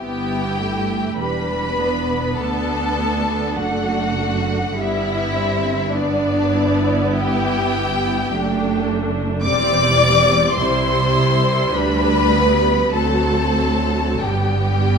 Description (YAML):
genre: classical, slow romantic movement for string orchestra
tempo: 51 BPM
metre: 4/4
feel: uneven beats, rubato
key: G major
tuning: A4 = 440 Hz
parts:
  - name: warm studio violin section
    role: melody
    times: 0.0-15.0 s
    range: D5 to D6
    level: -22 LUFS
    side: left 3 dB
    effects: none
  - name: rich studio violin section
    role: second line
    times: 0.0-15.0 s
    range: D4 to D5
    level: -22 LUFS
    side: left 2 dB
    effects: none
  - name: rich studio viola section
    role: accompaniment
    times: 0.0-15.0 s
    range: F#3 to E4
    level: -22 LUFS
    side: right 1 dB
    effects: none
  - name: dark studio double bass section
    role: bass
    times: 0.0-15.0 s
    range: E1 to D2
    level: -25 LUFS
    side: right 3 dB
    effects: none
  - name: rich studio cello section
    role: bass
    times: 0.0-15.0 s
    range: C2 to G2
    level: -24 LUFS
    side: right 2 dB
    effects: none
room: moderate scoring stage reverb, RT60 1.6 s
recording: none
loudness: -16 LUFS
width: side -6 dB against mid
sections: 0.0-15.0 A section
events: none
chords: 0.0 G; 2.4 D; 4.8 G; 9.5 C/E; 11.8 G/D; 12.9 D7; 14.2 G